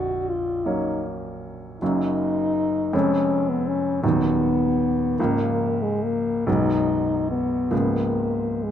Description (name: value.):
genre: classical, romantic duo for French horn and grand piano.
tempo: 44-55 BPM (dotted quarters).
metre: 6/8.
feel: rubato.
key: F# major.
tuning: A4 = 440 Hz.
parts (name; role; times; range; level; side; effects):
dark French horn; melody; 0.0-8.7 s; G#3 to F#4; -23 LUFS; left 2 dB; none.
warm baby grand piano; accompaniment; 0.0-8.7 s; A#0 to D#4; -24 LUFS; right 2 dB; none.
room: light reverb.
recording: none.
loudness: -20 LUFS.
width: side -9 dB against mid.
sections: 0.0-8.7 A section.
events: none.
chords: 0.0 F#/A#; 1.8 D#m/F#; 2.9 C#/E#; 4.0 B/D#; 5.2 A#m/C#; 6.5 G#m7/B; 7.7 C#7.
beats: 0.65 | 1.81 2.93 | 4.03 5.18 | 6.47 7.71.